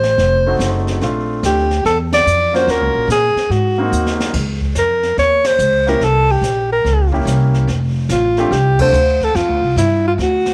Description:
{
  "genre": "jazz, small-group swing and bop",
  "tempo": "144 BPM",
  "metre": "4/4",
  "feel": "swing 66% on 8ths",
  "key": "unclear",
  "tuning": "A4 = 441 Hz",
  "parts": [
    { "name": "warm alto saxophone", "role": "melody", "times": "0.0-10.5 s", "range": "E4 to D5", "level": "-17 LUFS", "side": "equal", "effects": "none" },
    { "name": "upright bass", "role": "bass", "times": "0.0-10.5 s", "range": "F1 to Bb2", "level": "-20 LUFS", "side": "equal", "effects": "none" },
    { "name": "jazz brush drum kit", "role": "drums", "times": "0.0-10.5 s", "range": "brushed snare drum, crash cymbal, hi-hat, kick drum, ride cymbal, snare drum", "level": "-28 LUFS", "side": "equal", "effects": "none" },
    { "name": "clear baby grand piano", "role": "accompaniment", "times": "0.5-8.9 s", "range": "A3 to A4", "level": "-24 LUFS", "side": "equal", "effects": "none" }
  ],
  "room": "moderate plate reverb, RT60 1.1 s",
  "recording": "none",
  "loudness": "-15 LUFS",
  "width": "mono",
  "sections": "0.0-10.5 A section",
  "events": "band accent 2.1, 5.4, 8.7; drum fill 3.9-4.3",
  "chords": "0.2 F7b9; 1.0 Bbmaj7; 2.7 Ebm9; 3.5 Ab9; 4.3 Db69; 6.0 C7b9; 7.7 F69"
}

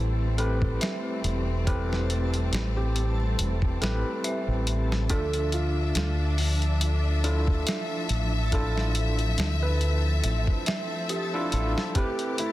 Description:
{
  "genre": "trip hop",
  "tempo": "70 BPM",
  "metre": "4/4",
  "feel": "swing 55% on 16ths",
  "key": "unclear",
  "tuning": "A4 = 440 Hz",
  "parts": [
    { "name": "overdriven tine electric piano", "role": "accompaniment", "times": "0.0-12.5 s", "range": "C4 to E5", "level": "-33 LUFS", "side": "right 1 dB", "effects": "tremolo, tape echo" },
    { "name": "clear studio string section", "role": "sustained chords", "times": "0.0-12.5 s", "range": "F3 to E5", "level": "-34 LUFS", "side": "left 3 dB", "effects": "none" },
    { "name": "dark detuned synth bell", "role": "arpeggios", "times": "0.0-12.5 s", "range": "G4 to E5", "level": "-37 LUFS", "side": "right 1 dB", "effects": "chorus, tape echo" },
    { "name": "deep dub fingered electric bass", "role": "bass", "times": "0.0-11.7 s", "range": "E1 to D2", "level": "-26 LUFS", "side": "equal", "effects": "none" },
    { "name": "backwards swelling texture", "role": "texture", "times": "0.0-12.5 s", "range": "A3 to A4", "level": "-40 LUFS", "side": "right 1 dB", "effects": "built-in reverb" },
    { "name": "dusty soul sampler-style drum kit", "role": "drums", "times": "0.4-12.5 s", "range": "hi-hat, kick drum, snare drum", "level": "-29 LUFS", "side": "equal", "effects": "none" },
    { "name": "felt-muted upright piano", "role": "melody", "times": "2.8-12.5 s", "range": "E4 to B4", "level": "-37 LUFS", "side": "right 1 dB", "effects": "tape echo" }
  ],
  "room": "digital ambience",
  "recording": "dense, heavily limited modern master",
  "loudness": "-24 LUFS",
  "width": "side -16 dB against mid",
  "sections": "0.0-12.5 A section",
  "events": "none",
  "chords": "0.0 Am7; 5.1 Dmadd9; 12.0 Am7"
}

